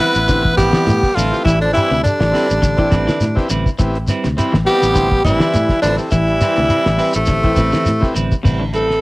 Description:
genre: afrobeat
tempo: 103 BPM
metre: 4/4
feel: swing 54% on 16ths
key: A minor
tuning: A4 = 438 Hz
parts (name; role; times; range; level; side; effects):
- raspy tenor saxophone; melody; 0.0-8.1 s; A3 to B4; -16 LUFS; equal; none
- clear trombone; second line; 0.0-8.1 s; C3 to E4; -24 LUFS; right 1 dB; cassette tape
- growling baritone saxophone; second line; 0.0-8.1 s; A2 to B3; -25 LUFS; left 1 dB; cassette tape
- electric guitar at the edge of break-up; arpeggios; 0.0-8.8 s; C3 to E3; -24 LUFS; left 2 dB; lush chorus, cassette tape, tape echo
- clean electric guitar; stabs; 0.0-9.0 s; G3 to B4; -24 LUFS; right 4 dB; cassette tape
- cloth-damped thuddy drum kit; drums; 0.0-9.0 s; crash cymbal, hi-hat, kick drum, snare drum; -19 LUFS; equal; cassette tape
- shekere; percussion; 0.1-8.9 s; none; -21 LUFS; equal; none
- fingered electric bass; bass; 0.2-9.0 s; A1 to A2; -20 LUFS; equal; none
- overdriven combo organ; accompaniment; 0.3-8.1 s; C4 to D5; -26 LUFS; left 1 dB; spring reverb, cassette tape
- breathy alto saxophone; melody; 8.8-9.0 s; A4; -15 LUFS; equal; none
room: light reverb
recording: home recording on cassette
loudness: -13 LUFS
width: side -21 dB against mid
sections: 0.0-8.5 A section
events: none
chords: 0.0 Am9

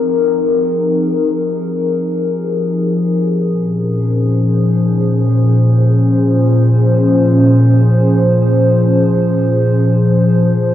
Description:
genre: ambient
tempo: free time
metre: none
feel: none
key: unclear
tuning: A4 = 439 Hz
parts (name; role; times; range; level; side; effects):
- warbly tape-like pad; solo; 0.0-10.7 s; Bb2 to C5; -11 LUFS; left 1 dB; chorus, built-in reverb, tape echo
room: wet lush hall reverb, RT60 2.8 s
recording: dark, warm production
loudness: -11 LUFS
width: side -12 dB against mid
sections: 0.0-10.7 A section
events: none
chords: 0.0 Fm11; 3.4 Bbm9

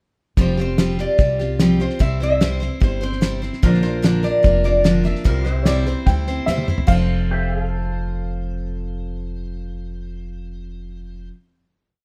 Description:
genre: honky-tonk and classic country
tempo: 148 BPM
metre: 4/4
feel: straight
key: F major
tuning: A4 = 440 Hz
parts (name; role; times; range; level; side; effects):
- lap resonator guitar; melody; 0.4-11.3 s; C5 to E5; -25 LUFS; equal; none
- picked steel-string acoustic guitar; accompaniment; 0.4-11.4 s; Bb2 to C5; -26 LUFS; equal; none
- upright bass; bass; 0.4-11.3 s; F1 to E2; -26 LUFS; equal; none
- cloth-damped thuddy drum kit; drums; 0.4-7.0 s; crash cymbal, hi-hat, kick drum, snare drum, toms; -21 LUFS; equal; none
- pedal steel guitar; sustained chords; 3.6-10.9 s; F4 to F5; -32 LUFS; equal; none
- warm upright piano; second line; 5.6-11.3 s; C5 to G5; -30 LUFS; equal; none
room: light reverb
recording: none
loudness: -19 LUFS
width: mono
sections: 0.4-6.9 verse; 6.9-10.1 final chord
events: drum fill 6.5-6.9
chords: 0.4 Fsus2; 2.0 C; 3.6 Bb; 5.3 C; 6.9 F

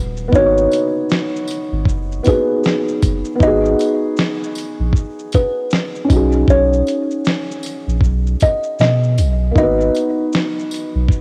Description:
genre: lo-fi hip hop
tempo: 78 BPM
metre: 4/4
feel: swing 60% on 16ths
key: G# minor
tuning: A4 = 440 Hz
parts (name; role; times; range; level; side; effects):
- kalimba; melody; 0.0-10.5 s; B4 to D#5; -22 LUFS; equal; none
- felt-muted upright piano; accompaniment; 0.0-11.2 s; A#3 to C#5; -21 LUFS; equal; cassette tape
- soft dub sub bass; bass; 0.0-11.1 s; D#1 to B2; -20 LUFS; equal; transformer saturation
- dusty soul sampler-style drum kit; drums; 0.2-11.2 s; hi-hat, kick drum, shaker, snare drum; -19 LUFS; equal; vintage 12-bit sampler grit, cassette tape
- tambourine; percussion; 0.7-10.9 s; none; -38 LUFS; equal; none
room: light reverb, small room ambience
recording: home recording on cassette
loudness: -16 LUFS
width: mono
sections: 0.0-11.2 A section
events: none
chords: 0.0 G#m7; 6.1 B6; 9.6 G#m7

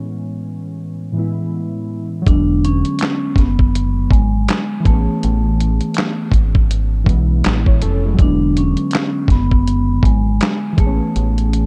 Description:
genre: lo-fi hip hop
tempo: 81 BPM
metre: 4/4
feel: swing 59% on 16ths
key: A major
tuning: A4 = 440 Hz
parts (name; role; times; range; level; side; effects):
- warbly lo-fi synth keys; accompaniment; 0.0-11.7 s; A2 to C#5; -25 LUFS; equal; chorus, cassette tape, low-pass filter
- vibraphone with medium mallets; melody; 2.3-11.7 s; G#3 to D4; -23 LUFS; equal; low-pass filter
- deep dub fingered electric bass; bass; 2.3-11.7 s; E1 to B1; -19 LUFS; equal; none
- dusty soul sampler-style drum kit; drums; 2.3-11.7 s; handclaps, hi-hat, kick drum, snare drum; -18 LUFS; equal; none
room: little or no reverb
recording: dark, warm production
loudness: -16 LUFS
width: mono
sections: 0.0-2.3 A section; 2.3-11.7 B section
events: none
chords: 0.0 Amaj9; 2.3 E9; 4.9 Amaj9; 8.2 E9; 10.8 Amaj9

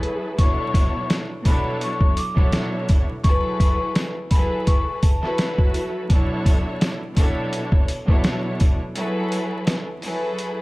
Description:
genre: hip hop, boom-bap hip-hop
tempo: 84 BPM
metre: 4/4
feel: swing 55% on 16ths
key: B minor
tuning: A4 = 439 Hz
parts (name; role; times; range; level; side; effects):
- rich studio string section; accompaniment; 0.0-10.6 s; B2 to C#5; -25 LUFS; equal; cassette tape, high-pass filter, low-pass filter
- trip hop sampler-style drum kit; drums; 0.0-10.6 s; hi-hat, kick drum, snare drum; -19 LUFS; equal; none
- vibraphone with soft mallets; melody; 0.4-5.5 s; A5 to D6; -28 LUFS; left 3 dB; high-pass filter, low-pass filter, tape echo
- sleigh bells; percussion; 0.4-10.6 s; none; -42 LUFS; left 2 dB; none
room: small room ambience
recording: dark, warm production, vinyl crackle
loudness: -18 LUFS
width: side -21 dB against mid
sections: 0.4-10.6 A section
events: break 9.0-10.6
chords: 0.4 Bm11; 3.2 F#m11; 6.1 Bm11; 9.0 F#m11

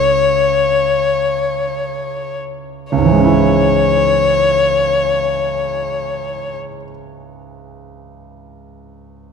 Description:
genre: classical, romantic duo for violin and grand piano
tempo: free time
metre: none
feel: none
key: C# minor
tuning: A4 = 440 Hz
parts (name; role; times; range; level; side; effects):
- rich violin; melody; 0.0-6.6 s; C#5; -15 LUFS; left 5 dB; none
- clear concert grand piano; accompaniment; 0.0-9.3 s; C#2 to C#5; -18 LUFS; right 4 dB; none
room: moderate scoring stage reverb, RT60 1.9 s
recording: dark, warm production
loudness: -13 LUFS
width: side -6 dB against mid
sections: 0.0-2.9 A section; 2.9-7.3 B section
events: slowing down 0.0-2.9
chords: 0.0 C#m

